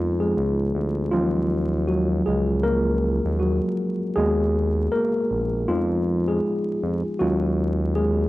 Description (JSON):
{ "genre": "lo-fi hip hop", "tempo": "79 BPM", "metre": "4/4", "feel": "swing 58% on 16ths", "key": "Eb minor", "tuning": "A4 = 438 Hz", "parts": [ { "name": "mellow tine electric piano", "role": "accompaniment", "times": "0.0-8.3 s", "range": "F3 to Bb4", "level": "-22 LUFS", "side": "equal", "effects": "medium stereo tremolo" }, { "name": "smooth synth bass", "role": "bass", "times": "0.0-8.3 s", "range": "Bb1 to F2", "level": "-25 LUFS", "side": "equal", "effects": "none" } ], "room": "light reverb", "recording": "vinyl crackle", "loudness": "-20 LUFS", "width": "side -17 dB against mid", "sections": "0.0-8.3 A section", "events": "tine electric piano solo 0.0-8.3", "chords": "0.0 Fm7b5; 1.1 Ebm11; 4.2 Abm9/Eb; 5.7 Fm7b5; 7.2 Ebm11" }